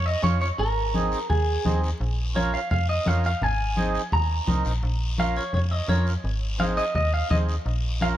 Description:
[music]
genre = latin, cumbia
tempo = 170 BPM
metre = 4/4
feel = straight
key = Bb minor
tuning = A4 = 441 Hz
[part]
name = clean electric guitar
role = melody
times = 0.0-8.1 s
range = Ab4 to Bb5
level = -27 LUFS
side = right 1 dB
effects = spring reverb
[part]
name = metallic FM bass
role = bass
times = 0.0-8.2 s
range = Ab1 to F2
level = -25 LUFS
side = equal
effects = none
[part]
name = mellow accordion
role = accompaniment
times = 0.2-8.2 s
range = C4 to Db5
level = -32 LUFS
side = right 4 dB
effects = none
[part]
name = congas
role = percussion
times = 0.2-8.2 s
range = none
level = -29 LUFS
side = left 2 dB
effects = none
[part]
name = guiro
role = percussion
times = 0.2-8.2 s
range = none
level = -38 LUFS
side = left 4 dB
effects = none
[sound]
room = little or no reverb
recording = dark, warm production, vinyl crackle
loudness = -22 LUFS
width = side -12 dB against mid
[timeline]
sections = 0.0-8.2 A section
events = none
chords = 0.0 Bbm (rootless); 0.6 Ab; 2.0 Bbm; 3.4 Ab; 4.8 Bbm; 6.2 Ab; 7.7 Bbm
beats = 0.23 | 0.59 0.94 1.29 1.65 | 2.00 2.35 2.71 3.06 | 3.42 3.77 4.12 4.47 | 4.83 5.18 5.54 5.89 | 6.24 6.59 6.95 7.30 | 7.66 8.01

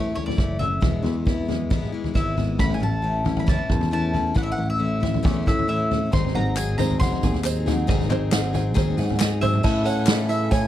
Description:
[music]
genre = indie folk with a building arrangement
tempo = 136 BPM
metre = 4/4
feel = straight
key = unclear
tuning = A4 = 437 Hz
[part]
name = mandolin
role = melody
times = 0.0-10.7 s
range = C#5 to B#5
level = -29 LUFS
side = left 1 dB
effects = none
[part]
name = picked plugged-in steel-string acoustic guitar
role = accompaniment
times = 0.0-10.7 s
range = E2 to A4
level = -27 LUFS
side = left 5 dB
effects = none
[part]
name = picked electric bass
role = bass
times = 0.0-10.7 s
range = E1 to A2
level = -25 LUFS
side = right 1 dB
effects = none
[part]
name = unplugged drum kit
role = drums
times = 0.1-10.6 s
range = crash cymbal, hi-hat, kick drum, snare drum, toms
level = -24 LUFS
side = equal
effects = none
[part]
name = open-back banjo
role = arpeggios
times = 6.1-10.7 s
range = B#4 to G#5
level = -30 LUFS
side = right 8 dB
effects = none
[part]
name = tambourine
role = percussion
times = 6.1-10.6 s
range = none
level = -40 LUFS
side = right 18 dB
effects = none
[part]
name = group handclap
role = percussion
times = 6.6-10.2 s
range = none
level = -31 LUFS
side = left 8 dB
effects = none
[part]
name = glockenspiel with soft plastic mallets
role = second line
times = 9.6-10.7 s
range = A5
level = -34 LUFS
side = left 6 dB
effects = none
[part]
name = hand-pumped harmonium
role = sustained chords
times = 9.6-10.7 s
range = C#3 to E4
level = -33 LUFS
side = right 2 dB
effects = none
[sound]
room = little or no reverb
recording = none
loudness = -20 LUFS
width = side -12 dB against mid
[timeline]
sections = 0.0-2.6 A section; 2.6-9.6 B section; 9.6-10.7 C section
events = none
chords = 0.0 A; 0.8 E; 2.6 A; 6.1 G#7; 9.6 A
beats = 0.38 | 0.82 1.26 1.71 2.15 | 2.59 3.03 3.47 3.92 | 4.36 4.80 5.24 5.68 | 6.12 6.57 7.00 7.45 | 7.89 8.33 8.77 9.21 | 9.64 10.08 10.52

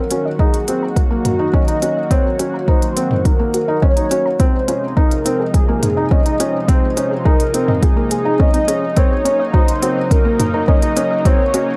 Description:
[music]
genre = piano and strings electronica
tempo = 105 BPM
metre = 4/4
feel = straight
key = Eb dorian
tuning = A4 = 437 Hz
[part]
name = warm velvety synth lead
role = melody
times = 0.0-11.8 s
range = Gb4 to Eb5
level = -23 LUFS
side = equal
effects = chorus, vintage 12-bit sampler grit, delay
[part]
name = lush unison pad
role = sustained chords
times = 0.0-11.8 s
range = C3 to Gb4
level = -26 LUFS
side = equal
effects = chorus, sidechain pumping
[part]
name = warm sub bass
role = bass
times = 0.0-11.8 s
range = none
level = barely audible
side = none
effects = none
[part]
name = soft round pluck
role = arpeggios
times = 0.1-11.6 s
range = C4 to Bb5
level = -30 LUFS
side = equal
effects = none
[part]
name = felt-muted upright piano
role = riff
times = 0.1-11.7 s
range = Bb3 to Eb4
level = -23 LUFS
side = equal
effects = delay
[part]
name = organic electronic drum kit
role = drums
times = 0.1-11.7 s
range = hi-hat, toms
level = -25 LUFS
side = equal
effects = overdrive
[part]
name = electronic kick drum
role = drums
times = 0.4-11.4 s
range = none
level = -17 LUFS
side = equal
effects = overdrive
[sound]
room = light reverb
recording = dark, warm production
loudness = -16 LUFS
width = mono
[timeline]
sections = 0.0-11.8 A section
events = build-up 0.0-11.8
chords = 0.0 Ebm; 4.4 Fm7; 9.0 Gb6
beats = 0.40 0.97 1.54 | 2.11 2.68 3.25 3.83 | 4.40 4.97 5.54 6.11 | 6.68 7.25 7.83 8.40 | 8.97 9.54 10.11 10.68 | 11.26

